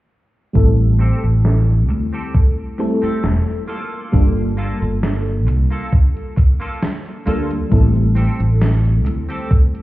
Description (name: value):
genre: vaporwave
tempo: 67 BPM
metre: 4/4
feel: swing 53% on 16ths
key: unclear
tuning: A4 = 440 Hz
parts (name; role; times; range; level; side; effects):
- mellow FM electric piano; accompaniment; 0.5-9.8 s; G3 to A4; -22 LUFS; left 1 dB; phaser, ensemble chorus, analog delay
- mellow fretless electric bass; bass; 0.6-9.2 s; E1 to D2; -15 LUFS; equal; analog chorus
- electronic kick drum; drums; 0.6-9.7 s; none; -13 LUFS; equal; none
- gated 80s digital drum machine; drums; 0.6-9.8 s; hi-hat, snare drum; -24 LUFS; equal; gated reverb, gated reverb snare, low-pass filter on hats, low-pass filter on snare, low-pass filter on room
- clean electric guitar; riff; 1.0-9.5 s; Bb3 to A4; -31 LUFS; right 1 dB; ensemble chorus, low-pass filter, analog delay
room: light reverb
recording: heard muffled through a wall, club reverb, cassette tape, EQ, nothing above 7.8 kHz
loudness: -14 LUFS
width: side -17 dB against mid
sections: 0.6-9.8 A section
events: filter sweep on drum 0.6-9.8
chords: 0.6 Am7; 3.7 Gm9; 7.7 Am7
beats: | 0.56 1.45 2.35 3.24 | 4.14 5.03 5.93 6.82 | 7.72 8.61 9.51